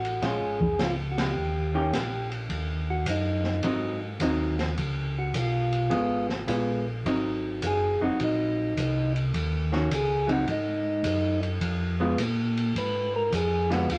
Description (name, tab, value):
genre	soul jazz organ trio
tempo	105 BPM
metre	4/4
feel	swing 68% on 8ths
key	Ab mixolydian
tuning	A4 = 440 Hz
part	percussive tonewheel organ	melody	0.0-14.0 s	Eb4 to Cb5	-31 LUFS	equal	slow rotary speaker
part	mellow tonewheel organ	bass	0.0-14.0 s	F1 to Bb2	-32 LUFS	equal	chorus vibrato, slow rotary speaker
part	open jazz drum kit	drums	0.0-14.0 s	hi-hat, kick drum, ride cymbal, snare drum	-35 LUFS	equal	none
part	vintage hollow-body jazz guitar	accompaniment	0.2-13.9 s	D3 to G4	-30 LUFS	equal	none
room	moderate club reverb, RT60 0.8 s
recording	none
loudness	-27 LUFS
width	mono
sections	0.0-2.5 A section; 2.5-14.0 B section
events	band accent 1.1; tonewheel organ solo 2.5-14.0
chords	0.2 Bbm7; 1.4 Eb7; 2.5 Ab7; 4.8 Db7; 7.1 Ab7; 9.3 Ebm7; 10.5 Ab5; 11.6 Fdim